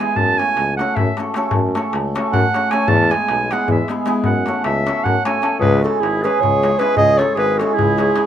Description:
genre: balkan folk, Balkan wedding band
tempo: 309 BPM (eighths)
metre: 7/8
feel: straight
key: F# minor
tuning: A4 = 440 Hz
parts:
  - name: clear clarinet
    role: second line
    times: 0.0-8.3 s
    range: E4 to A5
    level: -20 LUFS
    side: right 3 dB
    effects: none
  - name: cimbalom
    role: accompaniment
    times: 0.0-8.3 s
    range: G#3 to A4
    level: -20 LUFS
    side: right 1 dB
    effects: none
  - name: darbuka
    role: percussion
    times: 0.0-8.2 s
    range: none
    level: -23 LUFS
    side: left 3 dB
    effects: none
  - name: clear tuba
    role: bass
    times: 0.2-8.1 s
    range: G#1 to F#2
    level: -21 LUFS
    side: equal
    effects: none
  - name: mellow clarinet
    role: melody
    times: 5.6-8.3 s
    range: G#4 to D#5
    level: -17 LUFS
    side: equal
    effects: none
room: moderate small room reverb, RT60 0.5 s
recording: minimal, uncompressed stereo recording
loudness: -15 LUFS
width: side -10 dB against mid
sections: 0.0-5.6 A section; 5.6-8.3 B section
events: clarinet solo 0.0-5.6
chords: 0.2 F#m; 2.9 E; 4.2 F#m; 5.6 C#m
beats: | 0.17 0.36 0.56 0.75 0.94 1.14 1.33 | 1.53 1.72 1.92 2.11 2.31 2.50 2.69 | 2.89 3.08 3.28 3.47 3.66 3.86 4.05 | 4.25 4.44 4.63 4.83 5.02 5.22 5.41 | 5.60 5.80 5.99 6.19 6.38 6.58 6.77 | 6.96 7.16 7.35 7.55 7.74 7.94 8.13

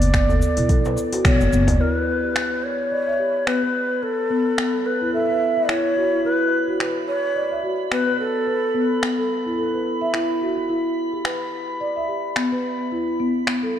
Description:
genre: organic downtempo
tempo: 108 BPM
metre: 4/4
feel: swing 56% on 16ths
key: unclear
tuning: A4 = 445 Hz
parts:
  - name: breathy mellow ney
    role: melody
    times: 0.0-9.3 s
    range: A4 to E5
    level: -23 LUFS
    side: equal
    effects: tape echo
  - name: upright bass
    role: bass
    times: 0.0-1.8 s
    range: F#1 to B1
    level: -20 LUFS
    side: equal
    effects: none
  - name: afro-pop drum kit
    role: drums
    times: 0.0-13.6 s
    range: finger snaps, hi-hat, shaker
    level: -27 LUFS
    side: equal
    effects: none
  - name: marimba with soft mallets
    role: arpeggios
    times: 0.1-13.7 s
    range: B3 to E5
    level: -23 LUFS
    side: equal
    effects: low-pass filter, tape echo
  - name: electronic kick drum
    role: drums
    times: 0.1-1.4 s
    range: none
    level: -18 LUFS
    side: equal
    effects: none
  - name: darbuka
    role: percussion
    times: 0.1-1.8 s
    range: none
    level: -26 LUFS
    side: equal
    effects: none
  - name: drifting glass-harmonics texture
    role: texture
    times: 2.7-13.8 s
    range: B5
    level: -33 LUFS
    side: left 1 dB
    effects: chorus, built-in reverb
room: moderate echo chamber reverb, RT60 2.5 s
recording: dark, warm production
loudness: -19 LUFS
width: side -10 dB against mid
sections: 0.0-1.8 A section; 1.8-13.8 B section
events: band accent 1.2; filter sweep on marimba 1.8-13.8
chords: 0.0 Bm9; 1.8 E5; 6.2 Dsus2 (rootless); 10.7 E5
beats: 0.14 0.69 1.25 | 1.80 2.36 2.92 3.47 | 4.03 4.58 5.14 5.69 | 6.25 6.80 7.36 7.92 | 8.47 9.03 9.58 10.14 | 10.69 11.25 11.80 12.36 | 12.92 13.47

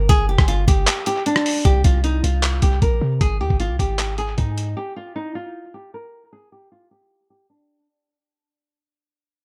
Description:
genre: hip hop, trap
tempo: 154 BPM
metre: 4/4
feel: half-time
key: unclear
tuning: A4 = 440 Hz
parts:
  - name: nylon-string guitar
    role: melody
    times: 0.0-7.9 s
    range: D4 to Bb4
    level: -26 LUFS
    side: equal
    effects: low-pass filter, tape echo
  - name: warm 808-style bass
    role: bass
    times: 0.0-4.8 s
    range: F1 to C3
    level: -23 LUFS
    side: equal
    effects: none
  - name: boom bap sampler-style drum kit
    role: drums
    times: 0.1-4.7 s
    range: handclaps, hi-hat, kick drum, rim click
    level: -21 LUFS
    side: equal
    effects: none
room: little or no reverb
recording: echo-heavy mix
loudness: -19 LUFS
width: mono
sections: 0.0-1.7 A section; 1.7-7.9 B section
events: break 0.9-1.7; fade-out 1.7-7.9; filter sweep on nylon-string guitar 1.7-7.9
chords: 0.1 G5; 1.7 Ebsus2 (rootless); 3.2 Ab5; 4.8 N.C.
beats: | 0.09 0.48 0.87 1.26 | 1.65 2.04 2.43 2.82 | 3.21 3.60 3.99 4.38 | 4.77 5.16 5.55 5.94 | 6.33 6.72 7.11 7.50

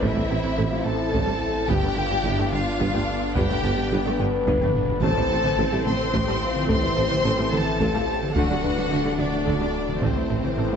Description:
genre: cinematic, hybrid orchestral and electronic film score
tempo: 72 BPM (dotted quarters)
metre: 6/8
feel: straight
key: A minor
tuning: A4 = 438 Hz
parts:
  - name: rich chamber violin section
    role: melody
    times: 0.0-10.8 s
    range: C5 to C6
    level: -30 LUFS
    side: left 2 dB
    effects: none
  - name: rich studio violin section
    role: second line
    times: 0.0-10.8 s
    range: C4 to C5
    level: -30 LUFS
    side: left 2 dB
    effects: none
  - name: rich symphonic viola section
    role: accompaniment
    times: 0.0-10.8 s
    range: E3 to D4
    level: -30 LUFS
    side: equal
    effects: none
  - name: clear French horn section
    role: sustained chords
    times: 0.0-10.8 s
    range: D4 to C5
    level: -30 LUFS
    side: left 6 dB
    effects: none
  - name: dark trombone section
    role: sustained chords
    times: 0.0-10.8 s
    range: D3 to C4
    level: -31 LUFS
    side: right 4 dB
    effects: none
  - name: analog pluck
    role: arpeggios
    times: 0.0-10.8 s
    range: D3 to A4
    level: -33 LUFS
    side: left 3 dB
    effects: none
  - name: mellow tuba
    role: bass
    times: 0.0-10.6 s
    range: G1 to D2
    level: -31 LUFS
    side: right 3 dB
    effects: none
  - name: rich symphonic cello section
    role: bass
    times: 0.0-10.8 s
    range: G2 to D3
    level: -31 LUFS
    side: right 2 dB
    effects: none
  - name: snarling distorted saw bass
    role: bass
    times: 0.0-10.8 s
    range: D1 to A1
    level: -32 LUFS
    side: equal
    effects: distortion
  - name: warm studio double bass section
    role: bass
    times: 0.0-10.6 s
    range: G1 to D2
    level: -30 LUFS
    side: right 4 dB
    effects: none
  - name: taiko ensemble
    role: drums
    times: 0.0-10.7 s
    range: none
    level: -30 LUFS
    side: equal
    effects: none
room: moderate scoring stage reverb, RT60 2.1 s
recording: nothing above 8.0 kHz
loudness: -20 LUFS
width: side -7 dB against mid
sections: 0.0-10.8 A section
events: drum fill 4.6-5.0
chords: 0.0 Am; 1.7 G; 5.0 Am; 8.4 D; 10.0 Am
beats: | 0.02 0.86 | 1.69 2.52 | 3.36 4.19 | 5.02 5.86 | 6.69 7.52 | 8.36 9.19 | 10.02

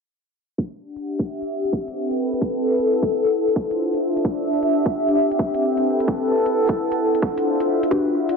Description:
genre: UK garage, two-step garage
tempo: 131 BPM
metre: 4/4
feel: swing 67% on 16ths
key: E minor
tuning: A4 = 440 Hz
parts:
  - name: electronic kick drum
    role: drums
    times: 0.6-8.0 s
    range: none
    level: -22 LUFS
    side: right 1 dB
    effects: high-pass filter on kick, studio reverb
  - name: warbly tape-like pad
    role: texture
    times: 1.0-8.4 s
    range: C4 to F#5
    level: -19 LUFS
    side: equal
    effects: chorus, built-in reverb, sidechain pumping
  - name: electronic hi-hat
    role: drums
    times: 1.0-8.4 s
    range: none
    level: -48 LUFS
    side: right 1 dB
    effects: studio reverb
  - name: ethereal airy pad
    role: sustained chords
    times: 8.2-8.4 s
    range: E5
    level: -39 LUFS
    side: right 3 dB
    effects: none
  - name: deep mellow chord stab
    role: stabs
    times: 7.9-8.1 s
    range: D4 to B4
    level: -20 LUFS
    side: left 2 dB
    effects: chorus, phaser, digital delay
room: moderate lush hall reverb, RT60 2.2 s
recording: low-pass filter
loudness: -19 LUFS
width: side -5 dB against mid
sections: 0.6-8.4 A section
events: filter sweep 0.6-8.4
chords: 0.6 Em9; 1.5 Am9; 2.4 F#m7; 3.3 Dm9; 4.2 Em9; 5.2 Am9; 6.1 F#m7; 7.0 Dm9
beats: | 0.58 1.04 1.50 1.96 | 2.42 2.87 3.33 3.79 | 4.25 4.71 5.16 5.62 | 6.08 6.54 7.00 7.45 | 7.91

